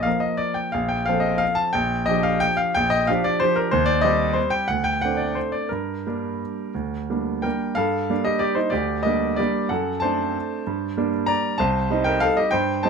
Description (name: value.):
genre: classical, piano waltz.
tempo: 168-201 BPM.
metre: 3/4.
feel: rubato.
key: G minor from 3.7 s.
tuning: A4 = 440 Hz.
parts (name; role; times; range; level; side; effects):
clear grand piano; solo; 0.0-12.9 s; Bb1 to Bb5; -20 LUFS; equal; none.
room: light reverb.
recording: none.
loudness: -20 LUFS.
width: side -5 dB against mid.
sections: 0.0-7.8 A section; 7.8-12.9 B section.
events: none.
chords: 0.0 Bb5; 0.7 F/Bb; 1.8 Gm7/Bb; 3.7 Cm/Eb; 4.7 D5; 5.7 Gm; 9.7 D7/F#; 10.7 Gm; 11.6 Cm.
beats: 0.07 0.41 | 0.74 1.08 1.42 | 1.75 2.08 2.42 | 2.75 3.08 3.41 | 3.73 4.04 4.38 | 4.70 5.02 5.36 | 5.70 6.05 6.40 | 6.75 7.10 7.45 | 7.79 8.11 8.43 | 8.74 9.06 9.39 | 9.71 10.03 10.36 | 10.67 10.97 11.29 | 11.60 11.91 12.23 | 12.54 12.85.